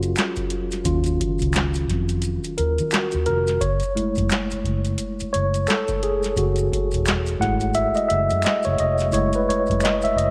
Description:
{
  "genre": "R&B, neo-soul",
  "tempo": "87 BPM",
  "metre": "4/4",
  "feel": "swing 60% on 16ths",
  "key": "unclear",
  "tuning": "A4 = 440 Hz",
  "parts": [
    { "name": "mellow tine electric piano", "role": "accompaniment", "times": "0.0-10.3 s", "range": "Eb3 to Gb5", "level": "-24 LUFS", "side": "equal", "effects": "none" },
    { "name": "vintage muted fingered electric bass", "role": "bass", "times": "0.0-10.3 s", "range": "Fb1 to Eb3", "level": "-27 LUFS", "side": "equal", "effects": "none" },
    { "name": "booming analog drum machine", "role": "drums", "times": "0.0-10.3 s", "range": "handclaps, hi-hat, kick drum, snare drum", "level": "-28 LUFS", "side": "equal", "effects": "none" },
    { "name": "maracas and finger snaps", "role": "percussion", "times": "0.0-10.1 s", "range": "none", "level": "-37 LUFS", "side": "equal", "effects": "none" }
  ],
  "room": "light reverb, digital ambience",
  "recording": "none",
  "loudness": "-22 LUFS",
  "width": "mono",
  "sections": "0.0-10.3 A section",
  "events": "tine electric piano solo 0.0-10.3",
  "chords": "0.0 Ebm9; 3.6 Gbm9",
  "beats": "0.16 | 0.85 1.54 2.23 2.92 | 3.61 4.30 4.99 5.68 | 6.37 7.06 7.75 8.44 | 9.13 9.81"
}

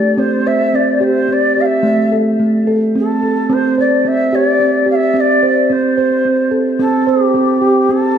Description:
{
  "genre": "world meditative, meditative tuned percussion",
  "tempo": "109 BPM",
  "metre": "3/4",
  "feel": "straight",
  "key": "C major pentatonic",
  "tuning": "A4 = 438 Hz",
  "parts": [
    { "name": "mellow Native American-style cedar flute", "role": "melody", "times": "0.0-8.2 s", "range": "G4 to F5", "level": "-16 LUFS", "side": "left 2 dB", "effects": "ping-pong delay" },
    { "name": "steel tongue drum", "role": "arpeggios", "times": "0.0-8.2 s", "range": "A3 to C5", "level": "-13 LUFS", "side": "right 2 dB", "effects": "none" }
  ],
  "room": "wet recital hall reverb, RT60 1.7 s, studio reverb",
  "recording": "none",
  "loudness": "-11 LUFS",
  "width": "side -8 dB against mid",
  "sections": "0.0-6.8 A section; 6.8-8.2 B section",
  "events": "none",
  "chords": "0.2 C5; 1.8 Am; 3.5 C5; 5.1 Csus2; 6.8 C5",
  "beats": "| 0.19 0.74 1.29 | 1.84 2.40 2.95 | 3.50 4.05 4.60 | 5.15 5.70 6.25 | 6.80 7.34 7.89"
}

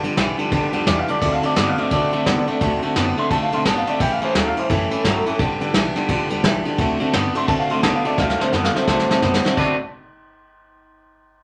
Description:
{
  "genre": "rockabilly",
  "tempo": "172 BPM",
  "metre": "4/4",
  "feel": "swing 61% on 8ths",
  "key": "D mixolydian",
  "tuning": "A4 = 442 Hz",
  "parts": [
    { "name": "electric guitar through a small old amp", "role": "melody", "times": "0.0-9.8 s", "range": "A4 to C6", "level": "-26 LUFS", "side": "equal", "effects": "none" },
    { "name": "picked steel-string acoustic guitar", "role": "accompaniment", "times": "0.0-9.8 s", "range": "G2 to G4", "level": "-29 LUFS", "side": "equal", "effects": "none" },
    { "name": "twangy electric guitar", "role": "riff", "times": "0.0-9.8 s", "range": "G2 to B4", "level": "-24 LUFS", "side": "equal", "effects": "none" },
    { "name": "upright bass", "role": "bass", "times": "0.0-9.8 s", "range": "G1 to C3", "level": "-33 LUFS", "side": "equal", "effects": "none" },
    { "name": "soft brush drum kit", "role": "drums", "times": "0.0-9.7 s", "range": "crash cymbal, kick drum, ride cymbal, snare drum", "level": "-24 LUFS", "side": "equal", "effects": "none" }
  ],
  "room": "wet studio reverb, RT60 0.6 s",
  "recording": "faint mains hum",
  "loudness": "-19 LUFS",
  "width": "mono",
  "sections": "0.0-9.6 A section; 9.6-11.0 B section",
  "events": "drum fill 8.2-9.6",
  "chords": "0.0 G7; 1.2 D7; 4.0 A7; 5.4 G7; 6.8 D7; 9.6 D6",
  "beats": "0.17 0.52 0.87 | 1.22 1.56 1.91 2.26 | 2.61 2.96 3.31 3.65 | 4.00 4.35 4.70 5.05 | 5.39 5.74 6.09 6.44 | 6.79 7.13 7.48 7.83 | 8.18 8.53 8.88 9.22 | 9.57"
}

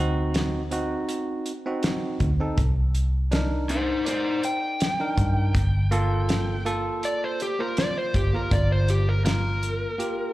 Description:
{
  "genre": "straight-eighth soul blues",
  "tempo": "81 BPM",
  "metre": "4/4",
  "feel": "swing 53% on 16ths",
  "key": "G minor",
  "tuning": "A4 = 439 Hz",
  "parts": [
    { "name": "barky tine electric piano", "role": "accompaniment", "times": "0.0-10.3 s", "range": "Bb3 to D5", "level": "-29 LUFS", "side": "right 1 dB", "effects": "slapback echo" },
    { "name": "vintage muted fingered electric bass", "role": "bass", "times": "0.0-9.8 s", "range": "G1 to G2", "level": "-23 LUFS", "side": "equal", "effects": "none" },
    { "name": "damped 70s drum kit", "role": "drums", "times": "0.3-10.2 s", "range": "hi-hat, kick drum, snare drum", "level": "-27 LUFS", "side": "equal", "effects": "slapback echo" },
    { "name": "overdriven slide guitar", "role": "melody", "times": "3.7-10.3 s", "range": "Eb4 to G5", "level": "-28 LUFS", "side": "left 1 dB", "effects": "slapback echo" }
  ],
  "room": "little or no reverb",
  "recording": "live gig heard through the venue's PA, club reverb",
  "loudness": "-22 LUFS",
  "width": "side -16 dB against mid",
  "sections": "0.0-10.3 A section",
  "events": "electric slide guitar solo 0.0-10.3",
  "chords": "0.0 D7b9; 2.6 Cm7; 5.5 Gm7",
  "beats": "0.35 1.09 1.83 | 2.58 3.32 4.06 4.81 | 5.55 6.29 7.03 7.77 | 8.52 9.26 10.00"
}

